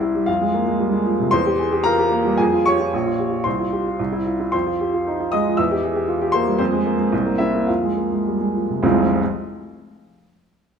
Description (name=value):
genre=classical, virtuoso piano study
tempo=102-120 BPM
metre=2/4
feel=rubato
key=F minor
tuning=A4 = 440 Hz
part: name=clear baby grand piano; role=solo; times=0.0-9.2 s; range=F1 to E6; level=-18 LUFS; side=equal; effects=none
room=wet recital hall reverb, RT60 1.6 s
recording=none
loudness=-17 LUFS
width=side -7 dB against mid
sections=0.3-8.8 A section; 8.8-9.9 B section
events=none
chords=0.3 Fm; 1.3 C7/E; 2.4 Fm; 2.9 Bbm; 3.5 F5/C; 4.0 C; 4.5 Fm; 5.6 C7/E; 6.6 Fm; 7.1 C7; 7.7 Fm